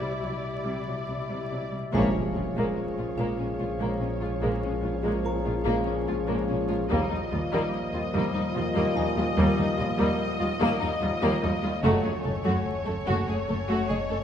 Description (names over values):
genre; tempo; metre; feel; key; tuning
cinematic, suspense film score; 73 BPM; 3/4; straight; unclear; A4 = 440 Hz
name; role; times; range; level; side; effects
muted studio violin section; melody; 0.0-14.2 s; Db5 to Eb5; -36 LUFS; left 3 dB; none
muted studio violin section; second line; 0.0-14.2 s; Bb3 to A4; -33 LUFS; left 2 dB; none
muted studio viola section; accompaniment; 0.0-14.2 s; Gb3 to A3; -31 LUFS; equal; none
glass harmonica; sustained chords; 0.0-14.2 s; F4 to Ab5; -36 LUFS; left 1 dB; none
muted studio cello section; bass; 0.0-14.2 s; Eb2 to C3; -33 LUFS; right 1 dB; none
metallic inharmonic drone; drone; 0.0-14.2 s; Gb1 to Eb2; -36 LUFS; equal; chorus, built-in reverb, phaser
music box; texture; 0.0-14.2 s; D4 to Bb5; -39 LUFS; equal; none
muted studio double bass section; bass; 0.2-14.0 s; Gb1 to Eb2; -34 LUFS; right 1 dB; none
mellow French horn section; sustained chords; 1.9-12.1 s; G3 to A4; -34 LUFS; left 6 dB; none
mellow trombone section; sustained chords; 1.9-12.1 s; Bb2 to Gb3; -33 LUFS; right 3 dB; none
impact; sound effects; 1.9-4.4 s; none; -38 LUFS; equal; none
room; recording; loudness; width
wet scoring stage reverb, RT60 1.8 s; dark, warm production, vinyl crackle; -24 LUFS; side -9 dB against mid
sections
0.0-1.9 A section; 1.9-14.2 B section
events
band accent 1.9-2.8; impact 1.9-4.4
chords
0.0 Cadd9; 1.9 Bbm7; 6.9 Ebadd9; 11.8 Gbmadd9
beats
0.21 1.07 | 1.94 2.77 3.60 | 4.43 5.25 6.08 | 6.91 7.74 8.55 | 9.38 10.20 11.02 | 11.84 12.66 13.48